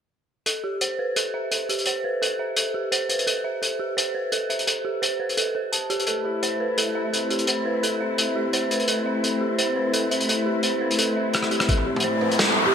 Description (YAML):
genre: half-time drum and bass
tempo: 171 BPM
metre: 4/4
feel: swing 54% on 16ths, half-time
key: A minor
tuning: A4 = 440 Hz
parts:
  - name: dark detuned synth bell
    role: arpeggios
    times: 0.5-12.7 s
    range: G4 to A5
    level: -25 LUFS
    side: right 2 dB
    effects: chorus, vintage 12-bit sampler grit, low-pass filter, digital delay
  - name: crunchy breakbeat drum kit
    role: drums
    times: 0.5-12.7 s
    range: hi-hat, rim click, snare drum, toms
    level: -24 LUFS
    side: left 1 dB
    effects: high-pass filter on hats, high-pass filter on toms, high-pass filter on snare, high-pass filter on room, gated reverb
  - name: muted symphonic cello section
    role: sustained chords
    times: 6.1-12.7 s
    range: A3 to E4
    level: -26 LUFS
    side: left 3 dB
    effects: sidechain pumping, low-pass filter
  - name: electronic kick drum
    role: drums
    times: 11.7-11.8 s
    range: none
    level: -22 LUFS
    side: equal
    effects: none
  - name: riser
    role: sound effects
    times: 12.0-12.7 s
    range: none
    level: -24 LUFS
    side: right 1 dB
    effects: none
  - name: marimba with medium mallets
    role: melody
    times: 12.7 s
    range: G4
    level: -20 LUFS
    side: right 3 dB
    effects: low-pass filter
room: wet plate reverb, RT60 1.9 s, small room ambience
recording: bright 1980s-style digital production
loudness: -21 LUFS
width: side -7 dB against mid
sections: 0.5-11.7 A section; 11.7-12.7 B section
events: drum fill 11.3-11.7; build-up 11.7-12.7; filter sweep on synth bell 11.7-12.7; filter sweep 11.7-12.7; riser 12.0-12.7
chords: 0.5 Am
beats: | 0.46 0.81 1.16 1.51 | 1.86 2.22 2.57 2.92 | 3.27 3.62 3.97 4.32 | 4.67 5.02 5.37 5.72 | 6.08 6.43 6.78 7.13 | 7.48 7.83 8.18 8.53 | 8.88 9.23 9.58 9.94 | 10.29 10.64 10.99 11.34 | 11.69 12.04 12.39 12.74